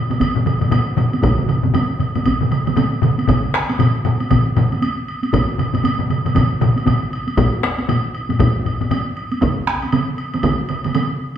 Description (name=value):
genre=japanese traditional, taiko drum ensemble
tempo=117 BPM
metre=4/4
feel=swing 60% on 16ths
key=none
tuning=none
part: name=taiko ensemble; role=percussion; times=0.1-11.1 s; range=none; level=-22 LUFS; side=right 1 dB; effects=none
part: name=taiko ensemble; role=percussion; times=0.1-9.1 s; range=none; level=-19 LUFS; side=left 3 dB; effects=none
part: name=taiko ensemble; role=percussion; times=0.1-11.1 s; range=none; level=-21 LUFS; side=right 4 dB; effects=none
part: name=woodblock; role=percussion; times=0.1-11.1 s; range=none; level=-26 LUFS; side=right 2 dB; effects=none
part: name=taiko ensemble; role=percussion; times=0.2-10.6 s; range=none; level=-22 LUFS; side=equal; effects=none
room=wet large studio reverb, RT60 1.3 s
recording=band playing live in one room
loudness=-15 LUFS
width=side -9 dB against mid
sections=0.0-7.4 A section; 7.4-11.4 B section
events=none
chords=none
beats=0.21 0.72 | 1.24 1.75 2.26 2.78 | 3.29 3.80 4.32 4.83 | 5.34 5.85 6.36 6.87 | 7.38 7.89 8.40 8.91 | 9.42 9.93 10.44 10.94